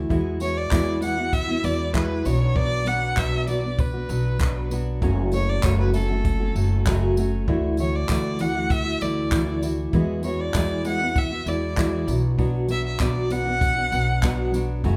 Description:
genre	acoustic pop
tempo	98 BPM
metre	4/4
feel	straight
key	unclear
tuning	A4 = 439 Hz
part	fingerpicked steel-string acoustic guitar	accompaniment	0.0-15.0 s	F#2 to F#4	-28 LUFS	equal	none
part	upright bass	bass	0.0-15.0 s	F#1 to E2	-28 LUFS	equal	none
part	compact cocktail drum kit	drums	0.1-15.0 s	handclaps, kick drum, tambourine	-28 LUFS	equal	none
part	tambourine	percussion	0.1-15.0 s	none	-48 LUFS	equal	none
part	warm violin	melody	0.4-14.5 s	A4 to F#5	-30 LUFS	equal	none
room	moderate large studio reverb, RT60 1.2 s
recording	band playing live in one room, faint mains hum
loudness	-23 LUFS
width	mono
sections	0.0-15.0 A section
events	none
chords	0.1 Eadd9; 2.3 Bm; 5.0 F#m; 7.5 Dadd9; 9.9 Eadd9; 12.1 Bm

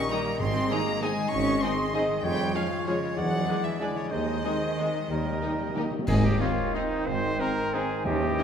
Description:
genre	classical, orchestral ballroom waltz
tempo	173-209 BPM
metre	3/4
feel	rubato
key	Ab major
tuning	A4 = 441 Hz
part	rich chamber violin section	melody	0.0-8.4 s	Db5 to Db6	-35 LUFS	left 3 dB	none
part	clear oboe	second line	0.0-8.4 s	Bb4 to Eb5	-37 LUFS	right 1 dB	none
part	dark clarinet	second line	0.0-8.4 s	C4 to Bb4	-37 LUFS	equal	none
part	mellow hollow flute section	second line	0.0-8.4 s	Db5 to Db6	-35 LUFS	left 1 dB	none
part	mellow bassoon	accompaniment	0.0-8.4 s	Eb3 to Ab3	-34 LUFS	right 2 dB	none
part	concert harp	arpeggios	0.0-8.4 s	Ab2 to Eb6	-34 LUFS	left 6 dB	none
part	rich chamber cello section	bass	0.0-8.3 s	Eb2 to Db4	-33 LUFS	right 1 dB	none
part	rich studio violin section	second line	0.1-8.4 s	Eb4 to Eb5	-41 LUFS	left 3 dB	none
part	rich chamber viola section	accompaniment	0.1-8.4 s	G#3 to F4	-40 LUFS	right 1 dB	none
part	clear trombone section	sustained chords	0.1-5.9 s	Eb3 to G#3	-39 LUFS	right 3 dB	none
part	warm French horn section	sustained chords	0.1-8.4 s	Eb3 to Bb4	-39 LUFS	left 2 dB	none
part	clear tuba	bass	0.4-8.3 s	E1 to Eb2	-37 LUFS	right 3 dB	none
part	rich chamber double bass section	bass	0.4-8.3 s	Ab1 to F2	-35 LUFS	right 4 dB	none
part	timpani	percussion	0.4-0.8, 4.1-8.4 s	Ab2 to Eb3	-33 LUFS	left 1 dB	none
part	warm trumpet	stabs	6.1-8.4 s	Eb4 to C5	-31 LUFS	right 1 dB	none
part	clash cymbals and concert bass drum	percussion	6.1-6.7 s	none	-35 LUFS	equal	none
room	wet concert hall reverb, RT60 1.9 s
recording	none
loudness	-24 LUFS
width	side -7 dB against mid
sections	0.0-6.1 A section; 6.1-8.4 B section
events	timpani fill 5.1-6.1; band accent 6.1-6.4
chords	0.4 Ab; 2.2 Db/F; 3.2 E7; 4.1 Ab/Eb; 5.1 Eb; 6.1 Ab

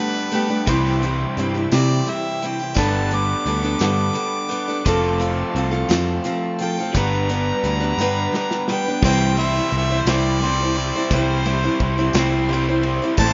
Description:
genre	folk rock and heartland rock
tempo	58 BPM (dotted quarters)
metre	6/8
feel	straight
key	C major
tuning	A4 = 441 Hz
part	clear harmonica	melody	0.0-13.3 s	B4 to D6	-28 LUFS	equal	analog delay
part	picked steel-string acoustic guitar	accompaniment	0.0-13.3 s	G2 to C5	-25 LUFS	equal	none
part	bright tonewheel organ	sustained chords	0.0-13.3 s	G3 to C5	-39 LUFS	equal	none
part	crunchy overdriven guitar	riff	0.0-13.3 s	A2 to C5	-27 LUFS	equal	none
part	natural country drum kit	drums	0.3-13.3 s	crash cymbal, hi-hat, kick drum, ride cymbal, snare drum	-27 LUFS	equal	none
part	picked electric bass	bass	0.7-13.3 s	F1 to C3	-25 LUFS	equal	none
part	tambourine	percussion	0.7-13.3 s	none	-40 LUFS	equal	none
room	light reverb, studio reverb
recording	rough home demo mix, nothing above 7.5 kHz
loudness	-20 LUFS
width	mono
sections	0.0-9.0 A section; 9.0-13.3 B section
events	harmonica solo 0.0-9.0; drum fill 8.0-9.0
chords	0.0 Gadd9; 0.7 C; 2.8 Gadd9; 4.9 F; 6.9 G; 9.0 C

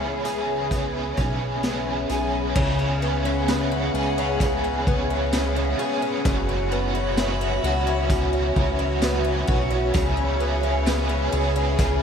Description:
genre	dream pop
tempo	65 BPM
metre	4/4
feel	straight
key	C# minor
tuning	A4 = 440 Hz
part	biting overdriven guitar	accompaniment	0.0-12.0 s	F#2 to G#4	-28 LUFS	right 3 dB	tremolo, ensemble chorus
part	granular cloud pad	sustained chords	0.0-12.0 s	F#4 to B5	-29 LUFS	equal	built-in reverb
part	picked twelve-string acoustic guitar	arpeggios	0.0-12.0 s	F#2 to G#4	-26 LUFS	left 3 dB	wide subtle chorus, ping-pong delay
part	chorused synth bass	bass	0.0-12.0 s	F#1 to C#2	-26 LUFS	equal	none
part	raw garage drum kit	drums	0.3-12.0 s	crash cymbal, hi-hat, kick drum, snare drum, tambourine	-26 LUFS	equal	none
part	drifting glass-harmonics texture	texture	3.6-10.4 s	E5 to B5	-38 LUFS	left 2 dB	chorus, built-in reverb, ping-pong delay
room	light reverb, small room ambience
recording	none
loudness	-20 LUFS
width	side -7 dB against mid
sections	0.0-2.6 A section; 2.6-12.0 B section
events	none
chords	0.0 C#m7; 6.3 F#7sus4; 9.9 C#m7

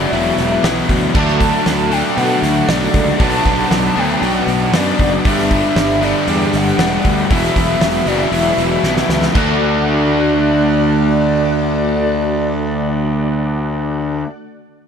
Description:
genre	rock, shoegaze and dream pop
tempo	117 BPM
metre	4/4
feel	straight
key	D major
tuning	A4 = 444 Hz
part	pure sine lead	melody	0.0-14.2 s	D5 to A5	-21 LUFS	left 1 dB	chorus, diffuse ambient delay
part	cranked stack guitar	riff	0.0-14.3 s	E2 to D4	-22 LUFS	equal	overdrive
part	crunchy overdriven guitar	riff	0.0-14.3 s	G2 to F#4	-20 LUFS	left 7 dB	wide subtle chorus
part	crunchy overdriven guitar	riff	0.0-14.3 s	E2 to A4	-22 LUFS	right 9 dB	reverse reverb
part	fuzz fingered electric bass	bass	0.0-14.2 s	E1 to B2	-20 LUFS	equal	overdrive
part	loose indie drum kit	drums	0.1-9.5 s	crash cymbal, hi-hat, kick drum, snare drum	-20 LUFS	right 1 dB	none
part	ensemble organ-string	sustained chords	1.1-14.2 s	D4 to B5	-24 LUFS	equal	ensemble chorus
room	wet lush hall reverb, RT60 1.8 s, small room ambience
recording	dreamy mix soaked in reverb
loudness	-13 LUFS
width	side -7 dB against mid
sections	0.0-9.4 A section; 9.4-13.4 B section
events	drum fill 8.8-9.4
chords	0.0 Esus2; 1.1 D; 3.2 Bm7; 5.3 G; 7.3 Esus2; 9.4 D

